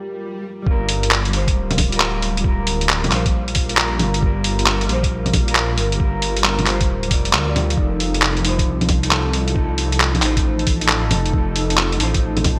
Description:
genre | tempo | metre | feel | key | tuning
future garage | 135 BPM | 4/4 | swing 65% on 16ths | G minor | A4 = 440 Hz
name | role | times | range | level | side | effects
deep dark ambient pad | sustained chords | 0.0-12.6 s | G3 to Bb4 | -31 LUFS | equal | chorus, built-in reverb, sidechain pumping
swell | sound effects | 0.0-0.7 s | none | -33 LUFS | equal | none
mellow electric guitar | accompaniment | 0.6-12.6 s | F3 to D5 | -27 LUFS | equal | subtle chorus, sidechain pumping, delay
dark detuned saw bass | bass | 0.7-12.6 s | D1 to D2 | -24 LUFS | equal | sidechain pumping
electronic kick drum | drums | 0.7-12.6 s | none | -22 LUFS | equal | small room ambience
lo-fi sampler-style drum kit | drums | 0.9-12.6 s | bongos, handclaps, hi-hat | -21 LUFS | equal | small room ambience, gated reverb
room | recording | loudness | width
light reverb, digital ambience | bright 1980s-style digital production | -18 LUFS | mono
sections
0.7-12.6 A section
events
break 0.0-0.7; swell 0.0-0.7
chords
0.0 Gm7; 7.8 F7

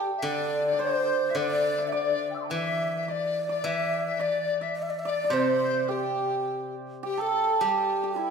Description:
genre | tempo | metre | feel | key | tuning
chinese traditional, Chinese chamber ensemble | 106 BPM | 2/4 | rubato | G zhi mode | A4 = 440 Hz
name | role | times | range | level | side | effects
breathy bright low xiao | melody | 0.0-8.3 s | E4 to E5 | -29 LUFS | right 1 dB | none
hammered dulcimer | second line | 0.0-8.3 s | E4 to E5 | -29 LUFS | right 3 dB | none
mellow hollow large dizi | second line | 0.0-8.3 s | E4 to E6 | -32 LUFS | left 8 dB | none
steel-string zither | accompaniment | 0.2-8.3 s | C3 to G3 | -34 LUFS | left 1 dB | none
room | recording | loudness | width
wet recital hall reverb, RT60 1.6 s | recorded in a church or concert hall | -24 LUFS | side -6 dB against mid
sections
0.0-7.0 A section; 7.0-8.3 B section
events
none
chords
none

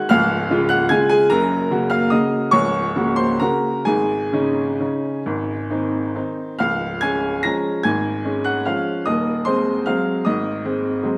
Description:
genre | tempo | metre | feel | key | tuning
classical, piano waltz | 126-160 BPM | 3/4 | rubato | Db major | A4 = 440 Hz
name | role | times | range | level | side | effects
clear upright piano | solo | 0.0-11.2 s | Db1 to Bb6 | -20 LUFS | equal | none
room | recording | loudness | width
wet recital hall reverb, RT60 1.7 s | none | -20 LUFS | mono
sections
0.0-6.6 A section; 6.6-11.2 B section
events
none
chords
0.1 Db; 1.3 Gb; 3.9 Absus4; 5.3 Ab; 6.6 Db; 9.1 Ab7/Eb

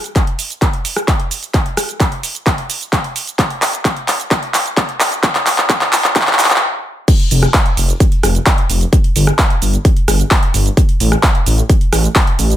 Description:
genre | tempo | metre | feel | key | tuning
EDM, festival progressive house | 130 BPM | 4/4 | straight | F major | A4 = 440 Hz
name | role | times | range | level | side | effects
big-room dance drum kit | drums | 0.0-12.6 s | crash cymbal, handclaps, hi-hat, rim click, shaker | -15 LUFS | equal | none
electronic kick drum | drums | 0.2-12.2 s | none | -13 LUFS | equal | none
wide detuned saw bass | bass | 7.3-12.5 s | F1 to A1 | -13 LUFS | equal | chorus, sidechain pumping
room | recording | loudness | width
light reverb | high-pass filter | -12 LUFS | side -12 dB against mid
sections
0.0-7.1 A section; 7.1-12.6 B section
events
build-up 0.0-7.1; drum fill 0.0-6.6; stop 6.6-7.1; drop 7.1-12.6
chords
none

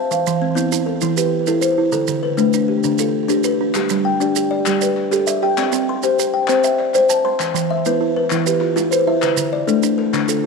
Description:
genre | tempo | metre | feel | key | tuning
southern african traditional, mbira-style interlocking cycle | 132 BPM (dotted quarters) | 12/8 | straight | G mixolydian | A4 = 440 Hz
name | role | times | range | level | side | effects
buzzing kalimba | arpeggios | 0.0-10.5 s | D3 to G5 | -20 LUFS | right 12 dB | tape echo
kalimba | arpeggios | 0.0-10.5 s | D3 to C6 | -18 LUFS | left 8 dB | none
maracas | percussion | 0.1-10.4 s | none | -27 LUFS | right 14 dB | none
group handclap | percussion | 3.7-10.3 s | none | -27 LUFS | left 10 dB | none
room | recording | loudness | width
wet echo chamber reverb, RT60 1.8 s, small room ambience | 1960s-style stereo with parts hard left and right | -15 LUFS | side -4 dB against mid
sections
0.0-3.7 A section; 3.7-10.5 B section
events
none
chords
0.1 Em; 1.9 Dm; 3.7 G; 5.6 C; 7.4 Em; 9.2 Dm

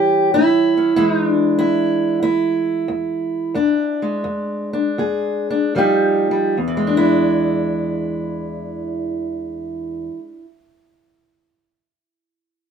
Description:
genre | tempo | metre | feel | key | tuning
acoustic country blues, solo or duo | 71-96 BPM | 4/4 | swing 67% on 8ths | E mixolydian | A4 = 443 Hz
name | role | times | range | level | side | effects
fingerpicked steel-string acoustic guitar | solo | 0.0-10.4 s | E2 to G#4 | -16 LUFS | right 1 dB | none
room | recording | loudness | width
moderate booth ambience, RT60 0.2 s | minimal, uncompressed stereo recording | -16 LUFS | side -7 dB against mid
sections
0.0-6.6 A section; 6.6-10.0 B section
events
slowing down 1.0-6.6; stop 1.0-5.8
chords
0.0 A7; 1.0 E7; 5.8 Fsus2; 6.6 E7

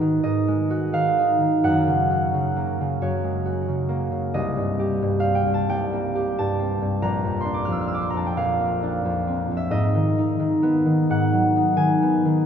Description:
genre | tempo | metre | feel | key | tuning
classical, solo harp piece | 89 BPM | 4/4 | uneven beats, rubato | unclear | A4 = 442 Hz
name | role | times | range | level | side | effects
concert harp | solo | 0.0-12.5 s | A#1 to E#6 | -20 LUFS | equal | none
room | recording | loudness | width
wet cathedral reverb, RT60 4.1 s | minimal, uncompressed stereo recording | -20 LUFS | side -8 dB against mid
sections
0.0-12.5 A section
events
none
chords
0.0 G#m7; 1.6 F#add9; 4.4 Cm7; 7.1 A#add9; 9.7 G#m7

